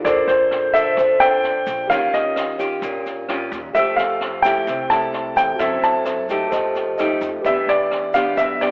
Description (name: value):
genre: bossa nova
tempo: 130 BPM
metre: 4/4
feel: straight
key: unclear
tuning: A4 = 441 Hz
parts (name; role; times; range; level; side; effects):
- warm concert grand piano; melody; 0.0-8.7 s; C5 to A5; -18 LUFS; equal; none
- nylon-string guitar; accompaniment; 0.0-8.7 s; Bb2 to C5; -21 LUFS; equal; none
- tine electric piano; accompaniment; 0.0-8.7 s; F4 to E6; -25 LUFS; equal; none
- upright bass; bass; 0.0-8.7 s; Bb1 to F#2; -39 LUFS; equal; none
- jazz brush drum kit; drums; 0.0-8.7 s; kick drum, rim click, snare drum; -30 LUFS; equal; none
- tube shaker; percussion; 0.1-8.7 s; none; -47 LUFS; equal; none
room: wet plate reverb, RT60 1.6 s, small room ambience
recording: dreamy mix soaked in reverb, telephone sound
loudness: -16 LUFS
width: side -32 dB against mid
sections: 0.0-8.7 A section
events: tine electric piano fill 6.8-7.5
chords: 0.1 Bbmaj9; 1.9 Eb9; 3.8 Fmaj9; 5.6 F#m7b5; 6.5 F9; 7.5 Em7